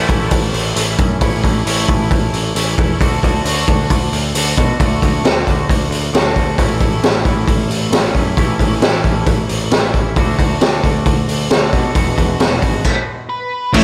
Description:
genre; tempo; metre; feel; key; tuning
quiet-loud alternative rock; 134 BPM; 4/4; straight; A major; A4 = 440 Hz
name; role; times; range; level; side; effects
twangy electric guitar; arpeggios; 0.0-12.8 s; E2 to F#4; -24 LUFS; equal; lush chorus, slapback echo, tape echo
overdriven picked electric bass; bass; 0.0-13.8 s; E1 to B2; -22 LUFS; equal; none
raw garage drum kit; drums; 0.1-13.8 s; crash cymbal, hi-hat, kick drum, snare drum; -17 LUFS; equal; none
octave-fuzz lead guitar; melody; 13.3-13.8 s; B4 to C#5; -22 LUFS; equal; distortion, slapback echo
sludgy distorted guitar; riff; 13.7-13.8 s; A2 to E4; -12 LUFS; equal; overdrive
thick fuzz guitar; riff; 13.7-13.8 s; A2 to E4; -17 LUFS; equal; none
room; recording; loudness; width
moderate lush hall reverb, RT60 1.8 s, small room ambience; big arena sound; -15 LUFS; mono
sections
0.0-13.7 A section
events
stop 12.8-13.7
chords
0.0 A; 3.0 D; 6.6 A; 10.2 D; 12.0 Eadd9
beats
0.31 0.76 | 1.21 1.66 2.10 2.55 | 3.00 3.45 3.90 4.34 | 4.79 5.24 5.69 6.14 | 6.58 7.03 7.48 7.93 | 8.37 8.82 9.27 9.72 | 10.16 10.61 11.06 11.51 | 11.95 12.40 12.85 13.29 | 13.74

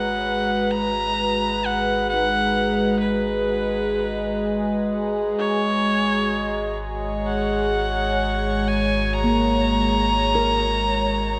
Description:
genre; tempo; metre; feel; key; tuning
ambient; free time; none; none; G# minor; A4 = 439 Hz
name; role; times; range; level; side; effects
clear electric violin; melody; 0.0-11.4 s; B4 to A#5; -26 LUFS; equal; delay
airy breathy pad; sustained chords; 0.0-11.4 s; G#3 to A#5; -28 LUFS; equal; chorus
warm sub bass; bass; 0.0-11.4 s; G#1; -32 LUFS; equal; none
analog drone; drone; 0.3-11.4 s; G#3 to G#4; -29 LUFS; equal; chorus
handpan; arpeggios; 2.1-11.4 s; A#3 to A#4; -28 LUFS; equal; none
room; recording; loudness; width
wet concert hall reverb, RT60 2.0 s; nothing above 10.4 kHz; -22 LUFS; mono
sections
0.0-11.4 A section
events
fade-in on handpan 0.0-11.4; fade-in on sub bass 0.0-11.4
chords
0.0 G#m9; 5.4 F#/G#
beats
free time

